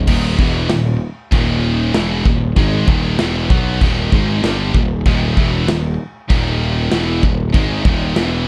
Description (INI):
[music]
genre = heavy metal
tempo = 96 BPM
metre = 4/4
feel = straight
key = unclear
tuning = A4 = 440 Hz
[part]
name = biting overdriven guitar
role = riff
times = 0.0-8.5 s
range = Eb2 to Cb4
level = -26 LUFS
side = equal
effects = none
[part]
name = heavy high-gain guitar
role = riff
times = 0.0-8.5 s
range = Eb2 to Cb4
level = -27 LUFS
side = equal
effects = distortion
[part]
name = heavy high-gain guitar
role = riff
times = 0.0-8.5 s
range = Eb2 to Cb4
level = -26 LUFS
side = equal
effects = distortion
[part]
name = fuzz picked electric bass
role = bass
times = 0.0-8.4 s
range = Eb1 to Cb2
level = -21 LUFS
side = equal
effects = overdrive
[part]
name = big rock drum kit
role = drums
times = 0.1-8.3 s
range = china cymbal, crash cymbal, kick drum, snare drum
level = -19 LUFS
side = equal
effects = none
[sound]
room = little or no reverb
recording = dark, warm production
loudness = -16 LUFS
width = mono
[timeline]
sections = 0.1-8.5 A section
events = none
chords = 0.1 Eb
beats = | 0.07 0.70 1.32 1.95 | 2.57 3.19 3.81 4.44 | 5.06 5.68 6.30 6.92 | 7.54 8.16